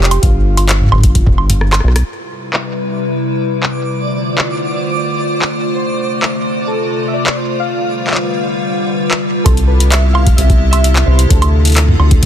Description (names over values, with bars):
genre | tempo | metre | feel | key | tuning
IDM | 130 BPM | 4/4 | straight | unclear | A4 = 440 Hz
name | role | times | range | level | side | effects
warbly lo-fi synth keys | melody | 0.0-1.6, 5.8-12.2 s | F4 to F5 | -23 LUFS | equal | chorus, ping-pong delay
deep acid bass | bass | 0.0-2.0, 9.5-12.3 s | F1 to D2 | -11 LUFS | equal | none
booming analog drum machine | drums | 0.0-12.3 s | handclaps, hi-hat, rim click, toms, woodblock | -17 LUFS | equal | low-pass filter on hats, low-pass filter on perc, low-pass filter on snare, low-pass filter on toms
electronic kick drum | drums | 0.2-1.4, 9.5-12.3 s | none | -12 LUFS | equal | none
icy glass pad | sustained chords | 2.3-12.3 s | C3 to C5 | -17 LUFS | left 1 dB | chorus, built-in reverb
twinkling granular texture | texture | 3.0-9.5 s | D5 | -25 LUFS | right 4 dB | built-in reverb, sidechain pumping
room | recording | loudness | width
digital ambience | dense, heavily limited modern master | -11 LUFS | side -9 dB against mid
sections
0.0-2.1 A section; 2.1-9.5 B section; 9.5-12.3 C section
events
drum fill 1.6-2.1; band accent 2.0; filter sweep on ambient pad 2.1-9.5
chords
0.2 G7(no3); 2.1 Cmaj7; 3.9 Dm7; 5.8 F; 7.6 G7; 9.5 Cmaj7; 11.3 Dm7